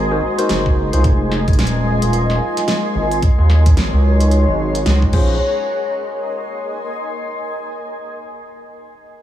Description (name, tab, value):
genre	glitch hop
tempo	110 BPM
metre	4/4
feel	swing 60% on 16ths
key	Bb minor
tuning	A4 = 440 Hz
part	dark analog pad	sustained chords	0.0-5.4 s	Gb3 to Eb5	-24 LUFS	left 1 dB	chorus, sidechain pumping
part	gritty driven synth bass	bass	0.0-5.4 s	Eb1 to Eb2	-15 LUFS	equal	overdrive
part	granular cloud pad	texture	0.0-7.6 s	Ab4 to C6	-22 LUFS	equal	built-in reverb, sidechain pumping
part	bright tine electric piano	stabs	0.1-1.3, 5.1-5.3 s	Db4 to C5	-23 LUFS	equal	sidechain pumping, digital delay
part	pop drum kit	drums	0.4-5.3 s	crash cymbal, hi-hat, snare drum	-25 LUFS	right 1 dB	none
part	electronic kick drum	drums	0.7-5.3 s	none	-14 LUFS	equal	none
room	light reverb, digital ambience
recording	small room ambience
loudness	-14 LUFS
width	side -12 dB against mid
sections	0.0-5.4 A section; 5.4-7.6 B section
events	none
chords	0.0 Ab7; 1.0 Fm7; 3.2 Ebm7; 5.1 Bbm7; 5.4 Bb9sus4